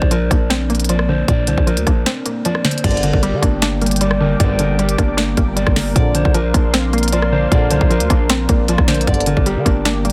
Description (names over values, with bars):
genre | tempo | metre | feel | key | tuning
hip hop, trap | 154 BPM | 4/4 | half-time | G minor | A4 = 440 Hz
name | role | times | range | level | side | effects
hollow square pluck | accompaniment | 0.0-10.1 s | G2 to D4 | -23 LUFS | equal | chorus
mellow electric guitar | arpeggios | 0.0-10.1 s | G3 to D5 | -23 LUFS | equal | spring reverb, digital delay
growling 808-style bass | bass | 0.0-10.1 s | G1 to D3 | -22 LUFS | equal | none
trap drum kit | drums | 0.0-10.1 s | crash cymbal, hi-hat, kick drum, rim click, snare drum | -20 LUFS | equal | none
dark analog pad | sustained chords | 3.5-10.1 s | Bb4 to D6 | -29 LUFS | equal | chorus
dark brass ensemble | stabs | 2.8-9.4 s | Bb1 to D3 | -27 LUFS | equal | none
room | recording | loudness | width
digital ambience | dense, heavily limited modern master | -16 LUFS | mono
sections
0.0-2.8 A section; 2.8-10.1 B section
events
break 2.1-2.8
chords
0.0 Bbadd9; 2.8 Gm; 6.0 Bbadd9; 9.1 Gm